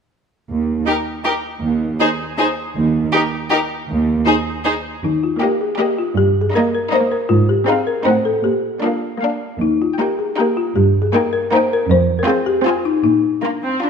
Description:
cinematic, playful, whimsical film cue; 158 BPM; 3/4; straight; Eb major; A4 = 440 Hz
warm studio cello section; bass; 0.5-13.4 s; Eb2 to Bb2; -19 LUFS; right 4 dB
rich studio violin section; melody; 0.9-13.9 s; Bb4 to Bb5; -26 LUFS; left 4 dB
clear studio violin section; second line; 0.9-13.9 s; D4 to Ab4; -23 LUFS; left 2 dB
rich studio viola section; accompaniment; 0.9-13.9 s; Bb3 to Eb4; -22 LUFS; right 2 dB
folk marimba with medium hard mallets; melody; 5.0-13.8 s; D4 to C5; -17 LUFS; left 4 dB
light reverb; -15 LUFS; side -6 dB against mid
0.5-5.0 A section; 5.0-13.9 B section
0.5 N.C.; 5.0 Eb; 6.2 Eb/G; 7.3 Fm7/Ab; 8.1 Adim7; 8.4 Bb; 9.6 Eb; 10.8 Eb/G; 11.9 Fm; 13.0 Bb

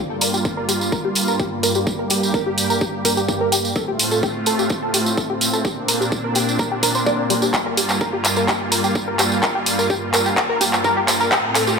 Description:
progressive house; 127 BPM; 4/4; straight; G minor; A4 = 440 Hz
filtered supersaw swell; sustained chords; 0.0-11.8 s; G2 to G4; -22 LUFS; right 1 dB; sidechain pumping
tight sequenced synth; arpeggios; 0.2-11.7 s; G3 to D5; -22 LUFS; equal; chorus, cassette tape, sidechain pumping, ping-pong delay
big-room dance drum kit; drums; 0.2-11.7 s; handclaps, hi-hat; -21 LUFS; equal; high-pass filter on hats, studio reverb, high-pass filter on snare
tambourine; percussion; 0.2-11.8 s; -24 LUFS; right 2 dB
electronic kick drum; drums; 0.5-11.4 s; -26 LUFS; equal; high-pass filter on kick, studio reverb
moderate concert hall reverb, RT60 2.0 s, digital ambience; -17 LUFS; side -5 dB against mid
0.0-11.8 A section
build-up 0.0-11.8; filter sweep on synth arpeggio sound 0.0-11.8; drum fill 7.5-11.8
0.0 Gm7; 3.8 F/A; 5.6 Bbadd9; 7.5 Gm7

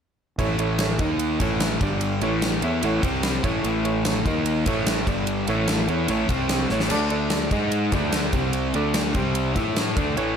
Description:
classic rock; 147 BPM; 4/4; straight; A4 = 440 Hz
barky reed electric piano; accompaniment; 0.4-10.3 s; C4 to B5; -30 LUFS; right 6 dB; fast tremolo
overdriven semi-hollow guitar; riff; 0.4-10.4 s; G2 to A4; -26 LUFS; left 10 dB
sludgy distorted guitar; riff; 0.4-10.4 s; G2 to A4; -27 LUFS; right 8 dB; overdrive
fuzz fingered electric bass; bass; 0.4-10.4 s; G1 to A2; -28 LUFS; equal; overdrive
gated 80s drum kit; drums; 0.4-10.3 s; crash cymbal, kick drum, ride cymbal, snare drum; -26 LUFS; equal
moderate large studio reverb, RT60 0.9 s, small room ambience; -20 LUFS; side -7 dB against mid
0.4-10.4 A section
reed electric piano fill 2.4-3.6; drum fill 6.7
0.4 A; 1.0 D#5; 1.4 A; 1.8 G5; 2.2 A; 3.0 C5; 3.4 A; 4.3 D#5; 4.7 A; 5.1 G5; 5.5 A; 6.3 C5; 6.7 A; 6.9 D5; 7.5 G#5; 7.9 D5; 8.3 C5; 8.8 D5; 9.2 C5; 9.6 A5; 10.0 D5

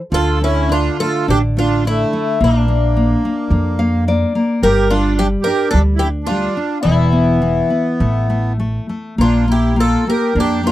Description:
fado-style ballad; 106 BPM; 4/4; uneven beats, rubato; D minor; A4 = 441 Hz
picked twelve-string acoustic guitar; melody; 0.1-10.7 s; D4 to Bb4; -20 LUFS; left 3 dB
accordion; second line; 0.1-10.7 s; A3 to G4; -21 LUFS; right 6 dB; light tremolo tuning
nylon-string guitar; accompaniment; 0.1-10.7 s; D3 to F5; -18 LUFS; left 2 dB
upright bass; bass; 0.1-10.7 s; E1 to F2; -17 LUFS; right 1 dB
little or no reverb; dry, close 1970s-style studio recording; -13 LUFS; side -14 dB against mid
0.1-10.7 A section
nylon-string guitar fill 3.5-4.6
0.1 D5; 2.4 Bb; 4.6 G5; 6.8 E5; 8.0 A5; 9.2 Bb

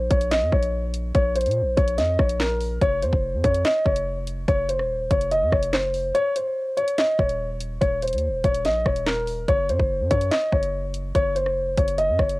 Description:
hip hop, drill; 144 BPM; 4/4; half-time; Bb minor; A4 = 444 Hz
dark concert grand piano; melody; 0.0-12.4 s; Bb4 to Eb5; -22 LUFS; left 1 dB; low-pass filter, cassette tape
hard-hitting 808-style bass; bass; 0.0-12.4 s; Eb1 to Bb2; -26 LUFS; equal
drill drum kit; drums; 0.1-12.4 s; handclaps, hi-hat, kick drum, rim click, snare drum; -24 LUFS; equal; cassette tape
light reverb; home recording on cassette; -20 LUFS; side -20 dB against mid
0.0-12.4 A section
kick muted 6.1-7.0
0.0 Bbm; 2.8 F5; 6.1 Eb5; 9.5 Gb5

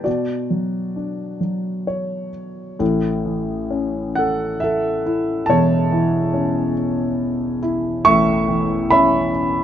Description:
classical, lyrical solo piano; 64-71 BPM; 3/4; rubato; A4 = 441 Hz
dark concert grand piano; solo; 0.0-9.6 s; E1 to C#6; -17 LUFS; equal
light reverb; nothing above 7.5 kHz; -17 LUFS; side -10 dB against mid
0.0-2.8 A section; 2.8-9.6 B section
grand piano fill 1.4-2.8
0.1 Bmadd9; 2.8 A

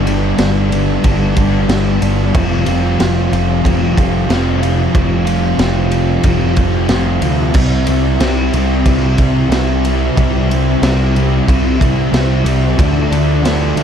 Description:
rock, shoegaze and dream pop; 92 BPM; 4/4; straight; A4 = 440 Hz
biting overdriven guitar; riff; 0.0-13.8 s; G2 to F4; -19 LUFS; right 15 dB; reverse reverb
thick fuzz guitar; riff; 0.0-13.8 s; F2 to D4; -17 LUFS; left 9 dB; distortion, ensemble chorus
growling picked electric bass; bass; 0.0-13.8 s; F1 to D2; -16 LUFS; equal; overdrive
raw garage drum kit; drums; 0.1-13.8 s; crash cymbal, kick drum, ride cymbal, snare drum; -18 LUFS; equal
studio reverb; dark, warm production; -11 LUFS; side -8 dB against mid
0.0-13.8 A section
0.0 G; 2.3 Fsus2; 7.6 C; 12.8 Dm

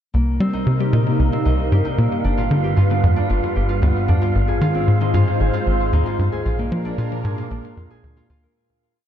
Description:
ambient, sequencer-driven space music; 114 BPM; 4/4; straight; C minor; A4 = 440 Hz
phased analog pad; sustained chords; 0.4-8.5 s; G2 to C5; -22 LUFS; equal; phaser, chorus
Celtic harp; arpeggios; 0.1-9.1 s; Bb3 to Bb4; -26 LUFS; equal; auto-pan, ping-pong delay
tight sequencer bass; riff; 0.1-8.5 s; G1 to G3; -19 LUFS; equal; ping-pong delay
wind-like tuned noise texture; texture; 1.1-8.6 s; F5; -29 LUFS; right 4 dB; built-in reverb
moderate lush hall reverb, RT60 2.7 s; dark, warm production; -16 LUFS; side -10 dB against mid
0.1-8.6 A section
fade-out 5.8-8.6
0.1 Cm7; 2.2 G7; 4.4 Ab6; 6.5 Bb7

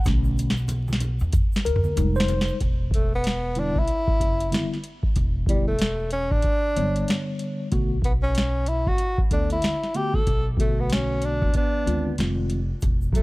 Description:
hip hop, jazz-hop; 94 BPM; 4/4; swing 60% on 16ths; E dorian; A4 = 440 Hz
mellow tine electric piano; accompaniment; 0.0-12.6 s; D3 to C#5; -28 LUFS; left 1 dB; medium stereo tremolo
tube shaker and congas; percussion; 0.0-2.6, 12.8-13.2 s; -36 LUFS; right 1 dB
upright bass; bass; 0.1-13.2 s; E1 to F#2; -26 LUFS; equal
booming analog drum machine; drums; 0.1-13.2 s; hi-hat, kick drum, snare drum, toms; -24 LUFS; equal
breathy tenor saxophone; melody; 2.9-13.2 s; G3 to A4; -27 LUFS; equal
mellow electric guitar; second line; 11.6-13.2 s; F#3 to B3; -32 LUFS; right 6 dB; spring reverb
small room ambience; vinyl crackle; -21 LUFS; side -21 dB against mid
0.0-2.6 A section; 2.6-13.2 B section
tine electric piano solo 0.0-2.6; drum fill 0.1-2.6
0.0 Bm7; 2.0 Fm7; 2.6 Em7; 7.7 Bm7; 12.2 Fm7

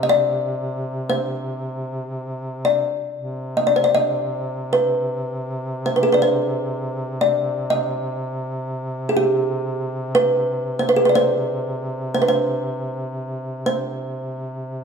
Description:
caucasian folk, Caucasian lament; 60 BPM; 3/4; uneven beats, rubato; C harmonic minor; A4 = 440 Hz
kalimba; melody; 0.0-14.8 s; G4 to Eb5; -19 LUFS; equal
warm duduk; drone; 0.0-14.8 s; C3; -27 LUFS; equal
moderate recital hall reverb, RT60 1.6 s; dark, warm production; -19 LUFS; side -6 dB against mid
0.0-14.8 A section

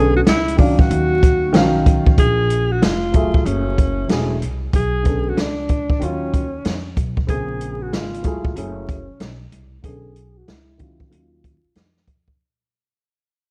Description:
hip hop, jazz-hop; 94 BPM; 4/4; swing 65% on 16ths; A4 = 439 Hz
mellow alto saxophone; melody; 0.0-12.0 s; Db4 to Ab4; -25 LUFS; equal; low-pass filter
dark upright piano; accompaniment; 0.0-11.5 s; Db3 to F5; -24 LUFS; equal; low-pass filter
upright bass; bass; 0.0-12.4 s; Fb1 to F2; -26 LUFS; equal
open jazz drum kit; drums; 0.3-12.4 s; hi-hat, kick drum, snare drum; -20 LUFS; equal; vintage 12-bit sampler grit
light reverb, small room ambience; dark, warm production, vinyl crackle; -18 LUFS; mono
0.0-2.2 A section; 2.2-12.4 B section
fade-out 2.2-12.4; filter sweep 2.2-12.4
0.0 Bm9; 0.9 Ebm9; 2.2 Bb5; 3.5 Gbm9; 4.7 Bm9; 6.0 Ebm9; 7.3 Bbm9; 8.6 Gbm9; 9.8 Bm9; 11.1 Ebm9

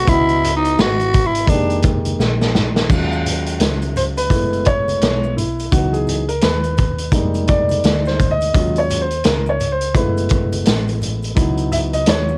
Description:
hip hop, jazz-hop; 85 BPM; 4/4; swing 61% on 16ths; A4 = 444 Hz
growling tenor saxophone; melody; 0.0-1.8 s; D4 to Gb4; -19 LUFS; equal; cassette tape
dark baby grand piano; accompaniment; 0.0-12.4 s; Eb3 to Fb5; -22 LUFS; equal; cassette tape
woody fretless electric bass; bass; 0.0-12.4 s; F1 to Eb2; -24 LUFS; equal; subtle chorus
vintage drum kit; drums; 0.1-12.3 s; crash cymbal, hi-hat, kick drum, snare drum; -21 LUFS; equal; cassette tape
maracas and congas; percussion; 0.1-12.4 s; -32 LUFS; equal
moderate booth ambience, RT60 0.2 s; home recording on cassette; -17 LUFS; mono
0.0-2.9 A section; 2.9-12.4 A section
tenor saxophone solo 0.0-2.9; drum fill 2.2-2.9; grand piano solo 2.9-12.4
0.1 Dbm11; 1.5 Fm11; 2.9 Ebm11; 4.3 Gbm11; 5.7 Dbm11; 7.1 Fm11; 8.5 Ebm11; 10.0 Gbm11; 11.4 Dbm11

